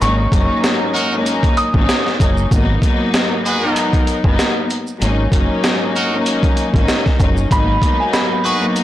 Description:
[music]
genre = hip hop, boom-bap hip-hop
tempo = 96 BPM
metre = 4/4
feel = swing 56% on 16ths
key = unclear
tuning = A4 = 438 Hz
[part]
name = dark upright piano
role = melody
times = 0.0-2.5, 7.5-8.8 s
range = G#5 to D#6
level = -21 LUFS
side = right 1 dB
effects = high-pass filter, low-pass filter, ping-pong delay
[part]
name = dark studio string section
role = accompaniment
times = 0.0-8.8 s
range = G#2 to A#4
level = -18 LUFS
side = left 2 dB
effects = high-pass filter, low-pass filter
[part]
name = deep dub fingered electric bass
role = bass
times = 0.0-7.8 s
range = F#1 to G#1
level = -18 LUFS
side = equal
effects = tube saturation
[part]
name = boom bap sampler-style drum kit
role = drums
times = 0.0-8.8 s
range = hi-hat, kick drum, snare drum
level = -17 LUFS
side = equal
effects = none
[part]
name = tube shaker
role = percussion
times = 0.0-8.8 s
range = none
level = -37 LUFS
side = right 5 dB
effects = none
[part]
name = brilliant trumpet section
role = stabs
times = 0.9-8.6 s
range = D#4 to B4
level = -21 LUFS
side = right 1 dB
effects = high-pass filter, low-pass filter, ping-pong delay
[sound]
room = light reverb, studio reverb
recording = blown-out, overdriven recording, vinyl crackle, overdrive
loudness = -13 LUFS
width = side -13 dB against mid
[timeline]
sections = 0.0-8.8 A section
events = none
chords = 0.0 F#69; 2.5 G#m7; 5.0 F#69; 7.5 G#m7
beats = | 0.01 0.64 1.26 1.89 | 2.51 3.14 3.76 4.39 | 5.01 5.64 6.26 6.89 | 7.51 8.14 8.76

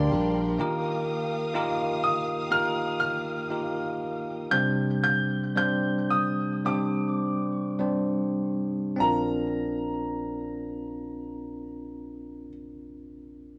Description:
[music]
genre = pop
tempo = 49-63 BPM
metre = 4/4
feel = straight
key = Bb major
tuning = A4 = 440 Hz
[part]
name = bright baby grand piano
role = melody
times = 0.0-12.5 s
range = Bb5 to G6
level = -31 LUFS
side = equal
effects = none
[part]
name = bell-like tine electric piano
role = accompaniment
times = 0.0-13.6 s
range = Bb1 to D5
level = -30 LUFS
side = equal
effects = none
[part]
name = warm studio string section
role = sustained chords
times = 0.0-4.5 s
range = Bb4 to Eb6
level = -39 LUFS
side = equal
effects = none
[part]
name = picked steel-string acoustic guitar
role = arpeggios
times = 0.0-0.6 s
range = G3 to G4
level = -36 LUFS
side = equal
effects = none
[part]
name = fingered electric bass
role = bass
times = 0.0-0.6 s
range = Bb1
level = -29 LUFS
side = equal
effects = none
[sound]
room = moderate scoring stage reverb, RT60 1.9 s, studio reverb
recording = worn, warbling old tape, cassette tape, warbly pitch drift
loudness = -28 LUFS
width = mono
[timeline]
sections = 0.0-9.0 A section; 9.0-13.6 B section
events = slowing down 0.6-9.0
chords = 0.0 Gm/Bb; 0.6 Ebadd9; 4.5 Csus2; 9.0 Bbadd9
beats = | 0.59 1.55 2.52 3.51 | 4.52 5.57 6.66 7.79 | 8.99 10.22 11.45 12.68

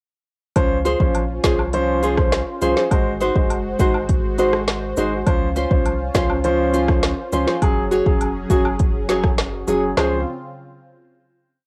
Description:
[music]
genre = dancehall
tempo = 102 BPM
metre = 4/4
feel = straight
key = Db major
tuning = A4 = 440 Hz
[part]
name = warm concert grand piano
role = accompaniment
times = 0.6-10.2 s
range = F3 to C5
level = -24 LUFS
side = equal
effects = cassette tape
[part]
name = warm analog pad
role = sustained chords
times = 0.6-10.2 s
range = Db3 to C5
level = -31 LUFS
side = equal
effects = chorus, phaser, sidechain pumping, cassette tape
[part]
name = punchy sub bass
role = bass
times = 0.6-10.2 s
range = F1 to Db2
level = -30 LUFS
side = equal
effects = none
[part]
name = afro-pop drum kit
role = drums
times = 0.6-10.1 s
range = hi-hat, kick drum, rim click, snare drum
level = -22 LUFS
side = equal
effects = cassette tape
[part]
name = woodblock and cabasa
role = percussion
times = 0.6-10.2 s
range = none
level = -33 LUFS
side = equal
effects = none
[part]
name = nylon-string guitar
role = arpeggios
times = 0.8-10.2 s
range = Db4 to Db5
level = -23 LUFS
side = equal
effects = cassette tape
[sound]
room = little or no reverb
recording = home recording on cassette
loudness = -19 LUFS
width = mono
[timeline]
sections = 0.6-10.0 chorus; 10.0-11.7 final chord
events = none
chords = 0.6 Dbmaj7; 2.9 Ab7; 5.3 Dbmaj7; 7.6 Gbsus2; 10.0 Dbmaj7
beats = | 0.56 1.15 1.74 2.33 | 2.91 3.50 4.09 4.68 | 5.27 5.86 6.44 7.03 | 7.62 8.21 8.80 9.38 | 9.97

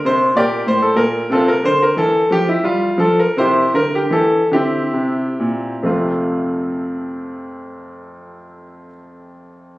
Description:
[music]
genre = classical, baroque-style suite movement for grand piano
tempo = 43-65 BPM (dotted quarters)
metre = 12/8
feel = rubato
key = F major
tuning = A4 = 440 Hz
[part]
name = clear grand piano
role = solo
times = 0.0-9.8 s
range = F2 to D5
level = -15 LUFS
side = equal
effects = none
[sound]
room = wet recital hall reverb, RT60 1.6 s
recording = recorded on a phone in the room, studio ambience, compression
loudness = -14 LUFS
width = side -18 dB against mid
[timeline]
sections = 0.0-5.8 A section; 5.8-9.8 B section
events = slowing down 0.0-5.8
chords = 0.0 Gm/Bb; 1.3 F5/C; 3.3 C7; 5.8 F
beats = 0.34 | 1.30 2.29 3.35 4.51 | 5.83 7.12 8.38 9.66

